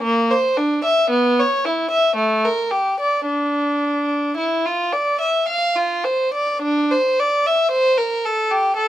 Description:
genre	classical, baroque-style suite movement for unaccompanied violin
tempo	52-58 BPM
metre	3/4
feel	rubato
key	D minor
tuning	A4 = 437 Hz
part	warm violin	solo	0.0-8.9 s	A3 to F5	-16 LUFS	equal	none
room	light reverb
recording	minimal, uncompressed stereo recording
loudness	-16 LUFS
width	side -13 dB against mid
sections	0.0-6.6 A section; 6.6-8.9 B section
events	none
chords	none

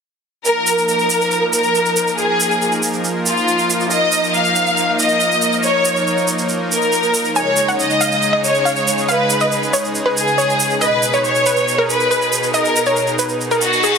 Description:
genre	uplifting trance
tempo	139 BPM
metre	4/4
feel	straight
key	unclear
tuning	A4 = 439 Hz
part	rich studio violin section	second line	0.5-14.0 s	F4 to F5	-16 LUFS	left 1 dB	ping-pong delay
part	supersaw pad	sustained chords	0.5-14.0 s	Cb3 to Bb4	-22 LUFS	equal	none
part	tube shaker	percussion	0.5-14.0 s	none	-22 LUFS	right 4 dB	none
part	wide unison pluck	melody	7.4-14.0 s	Ab4 to Ab5	-19 LUFS	equal	cassette tape, ping-pong delay
part	reverse cymbal	sound effects	13.5-14.0 s	none	-20 LUFS	left 11 dB	none
room	moderate lush hall reverb, RT60 2.5 s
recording	heavily compressed radio sound, multiband compression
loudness	-14 LUFS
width	side -6 dB against mid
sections	0.5-14.0 A section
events	reverse cymbal 13.5-14.0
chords	0.5 Ebsus2; 7.4 Dbsus2; 10.8 Abmadd9

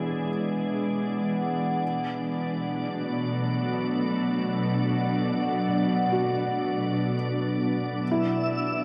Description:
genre	ambient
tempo	free time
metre	none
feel	none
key	B dorian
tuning	A4 = 439 Hz
part	soft additive organ-like pad	sustained chords	0.0-8.8 s	B2 to D4	-29 LUFS	equal	ensemble chorus, built-in reverb
part	felt-muted upright piano	arpeggios	0.0-8.8 s	E4 to C#5	-35 LUFS	equal	tape echo
part	dark chamber cello section	bass	0.0-8.0 s	B2	-37 LUFS	equal	tube saturation
part	overtone-sweeping drone	drone	0.0-8.8 s	B3	-34 LUFS	equal	chorus, built-in reverb, phaser
part	twinkling granular texture	texture	8.2-8.8 s	E5 to E6	-33 LUFS	equal	built-in reverb
room	wet huge ambient reverb, RT60 8.2 s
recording	none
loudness	-27 LUFS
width	mono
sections	0.0-8.0 A section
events	fade-in on cello section 0.0-8.0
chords	0.0 E7/B; 1.8 Bm7; 8.0 E7/B

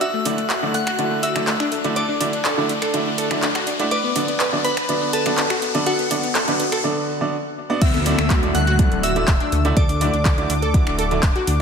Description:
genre	progressive house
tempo	123 BPM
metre	4/4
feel	straight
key	D major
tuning	A4 = 441 Hz
part	glassy synth bell	melody	0.0-11.6 s	F#4 to F#6	-26 LUFS	left 2 dB	chorus, sidechain pumping, low-pass filter, digital delay
part	analog pluck	arpeggios	0.0-11.5 s	A3 to B4	-25 LUFS	left 1 dB	chorus, sidechain pumping, ping-pong delay
part	dark detuned saw bass	bass	0.0-11.6 s	D1 to D2	-25 LUFS	equal	sidechain pumping, high-pass filter
part	house drum kit	drums	0.0-11.6 s	crash cymbal, finger snaps, handclaps, hi-hat	-25 LUFS	equal	overdrive
part	riser and downlifter	sound effects	0.0-11.6 s	none	-28 LUFS	left 3 dB	none
part	drifting glass-harmonics texture	texture	0.0-6.8 s	F#6	-36 LUFS	left 1 dB	none
part	bright baby grand piano	stabs	0.3-11.2 s	D3 to D5	-24 LUFS	right 3 dB	sidechain pumping, ping-pong delay
part	soft supersaw	second line	7.8-11.6 s	D6 to F#6	-30 LUFS	left 1 dB	cassette tape, sidechain pumping, ping-pong delay
part	electronic kick drum	drums	7.8-11.3 s	none	-18 LUFS	equal	none
room	moderate lush hall reverb, RT60 1.8 s, digital ambience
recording	none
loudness	-17 LUFS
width	side -6 dB against mid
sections	0.0-7.8 A section; 7.8-11.6 B section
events	build-up 0.0-7.8; riser 0.0-6.8; break 6.8-7.8; drop 7.8-11.6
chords	0.0 Dadd9; 3.9 Bm/D; 7.8 Dadd9

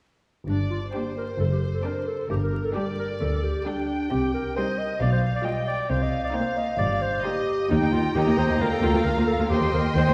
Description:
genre	quick classical-period movement for symphony orchestra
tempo	133 BPM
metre	4/4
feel	rubato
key	G minor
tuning	A4 = 439 Hz
part	rich chamber violin section	melody	0.5-10.1 s	Bb4 to G5	-35 LUFS	equal	none
part	mellow clarinet	second line	0.5-10.1 s	D4 to Eb5	-30 LUFS	equal	none
part	clear chamber cello section	bass	0.5-10.1 s	D2 to C3	-32 LUFS	equal	none
part	rich chamber double bass section	bass	0.5-10.0 s	F#1 to Eb2	-31 LUFS	equal	none
part	rich studio violin section	second line	0.9-10.1 s	F5 to D6	-34 LUFS	equal	none
part	rich chamber viola section	accompaniment	0.9-10.1 s	G3 to C5	-31 LUFS	equal	none
room	wet concert hall reverb, RT60 1.9 s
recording	heard from further back in the room, vinyl crackle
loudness	-25 LUFS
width	mono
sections	0.5-10.1 A section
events	none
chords	0.5 Gm; 1.4 D7/F#; 2.3 Gm; 4.1 Cm; 5.0 G7/B; 5.9 Cm7; 7.7 Eb; 8.6 Bb/D; 9.5 Cm7/Eb

